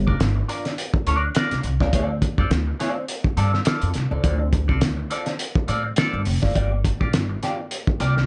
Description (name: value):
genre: funk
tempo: 104 BPM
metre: 4/4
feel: swing 56% on 16ths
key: G minor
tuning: A4 = 440 Hz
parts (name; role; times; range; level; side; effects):
- upright bass; bass; 0.0-8.2 s; F1 to A2; -25 LUFS; equal; none
- clean electric guitar; accompaniment; 0.1-8.2 s; Bb3 to D5; -29 LUFS; equal; wah, phaser, plate reverb
- cloth-damped thuddy drum kit; drums; 0.1-8.2 s; hi-hat, kick drum, snare drum; -26 LUFS; equal; none
room: light reverb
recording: dark, warm production, nothing above 10.5 kHz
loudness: -22 LUFS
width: mono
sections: 0.0-8.3 A section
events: none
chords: 0.0 Gm7 (rootless); 1.9 Dm7; 6.6 Gm7